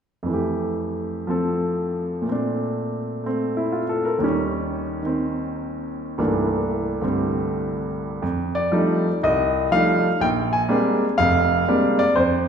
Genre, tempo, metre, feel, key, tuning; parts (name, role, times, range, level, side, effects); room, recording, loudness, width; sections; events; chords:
solo jazz; 122 BPM; 4/4; swing 67% on 8ths, rubato; F major; A4 = 440 Hz
clear grand piano; solo; 0.2-12.5 s; F1 to Ab5; -20 LUFS; equal
wet recital hall reverb, RT60 1.8 s; recorded in a church or concert hall; -20 LUFS; side -7 dB against mid
0.3-8.2 A section; 8.2-12.5 B section
0.3 Fmaj9; 2.3 Bbmaj9; 4.2 Eb7; 6.2 C13; 8.2 F13; 10.2 Bb13